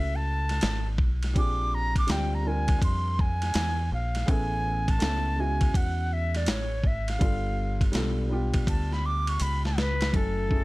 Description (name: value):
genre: hip hop, jazz-hop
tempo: 82 BPM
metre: 4/4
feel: swing 65% on 16ths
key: unclear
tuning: A4 = 441 Hz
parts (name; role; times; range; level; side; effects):
- reedy concert flute; melody; 0.0-10.6 s; A4 to D6; -31 LUFS; equal; none
- dark baby grand piano; accompaniment; 0.0-10.6 s; F#3 to G#5; -34 LUFS; equal; none
- deep dub fingered electric bass; bass; 0.0-10.6 s; F#1 to E#2; -28 LUFS; equal; none
- dusty soul sampler-style drum kit; drums; 0.5-10.6 s; hi-hat, kick drum, ride cymbal, snare drum; -27 LUFS; equal; none
room: little or no reverb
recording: none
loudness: -24 LUFS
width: side -21 dB against mid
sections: 0.0-10.1 A section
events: flute solo 0.0-10.1; drum fill 9.4-10.1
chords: 0.0 F#m9; 1.4 A#13; 4.3 Amaj9; 7.2 G9; 10.1 F#m9